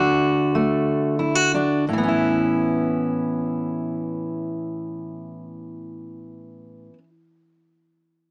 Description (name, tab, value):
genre	folk, solo fingerstyle acoustic guitar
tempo	87 BPM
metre	3/4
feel	rubato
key	A major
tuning	A4 = 440 Hz
part	fingerpicked steel-string acoustic guitar	solo	0.0-7.1 s	A2 to F#4	-23 LUFS	equal	none
room	moderate studio reverb, RT60 0.5 s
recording	small speaker sound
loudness	-22 LUFS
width	mono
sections	0.0-1.9 A section; 1.9-6.0 B section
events	slowing down 0.0-1.9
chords	0.0 D; 1.9 Aadd9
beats	0.54 1.18 | 1.87 2.58 3.27 | 3.95 4.63 5.32